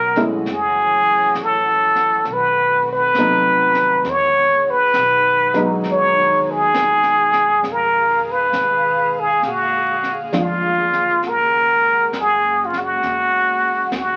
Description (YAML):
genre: jazz ballad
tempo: 67 BPM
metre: 4/4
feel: swing 67% on 8ths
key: unclear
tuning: A4 = 440 Hz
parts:
  - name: trumpet with plunger mute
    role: melody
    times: 0.0-14.2 s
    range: E#4 to C#5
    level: -17 LUFS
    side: equal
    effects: none
  - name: dark chamber string section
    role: sustained chords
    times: 0.0-14.2 s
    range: B2 to F5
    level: -32 LUFS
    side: equal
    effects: none
  - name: upright bass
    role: bass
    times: 0.0-14.2 s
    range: F#1 to A#2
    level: -42 LUFS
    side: equal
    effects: none
  - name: warm upright piano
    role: accompaniment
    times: 0.2-11.2 s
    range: E#3 to E#4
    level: -24 LUFS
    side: equal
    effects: none
  - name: jazz brush drum kit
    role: drums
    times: 0.2-14.2 s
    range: brushed snare drum, hi-hat, snare drum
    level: -34 LUFS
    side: equal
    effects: none
room: moderate studio reverb, RT60 0.6 s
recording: very old 78 rpm record, vinyl crackle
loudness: -17 LUFS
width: mono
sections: 0.0-14.2 A section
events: none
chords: 0.5 F#m7; 2.3 B7b9; 4.0 Emaj9; 7.6 Fm7b5; 9.4 A#7; 11.2 D#m7